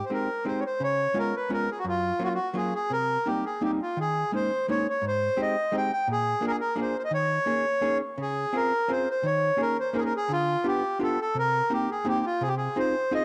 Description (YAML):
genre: musette waltz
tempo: 171 BPM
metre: 3/4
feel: straight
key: unclear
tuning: A4 = 440 Hz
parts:
  - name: accordion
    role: melody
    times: 0.0-13.2 s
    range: F4 to G5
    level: -28 LUFS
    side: equal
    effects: cassette tape
  - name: archtop guitar, miked and amplified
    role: accompaniment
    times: 0.1-13.2 s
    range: Gb2 to Ab4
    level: -32 LUFS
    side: equal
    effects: cassette tape
room: wet spring reverb, RT60 1.9 s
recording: home recording on cassette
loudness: -27 LUFS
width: mono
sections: 0.0-13.2 A section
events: none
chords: 0.0 Abmaj7; 0.8 Db7; 1.8 Gbmaj7; 2.9 Cm7; 4.0 Eb7sus4; 5.0 Abmaj7; 6.1 Bb7; 7.1 Eb7sus4; 8.2 Dbmaj7; 9.2 Eb7sus4; 10.3 G7/D; 11.3 Cm7; 12.4 Fm7/C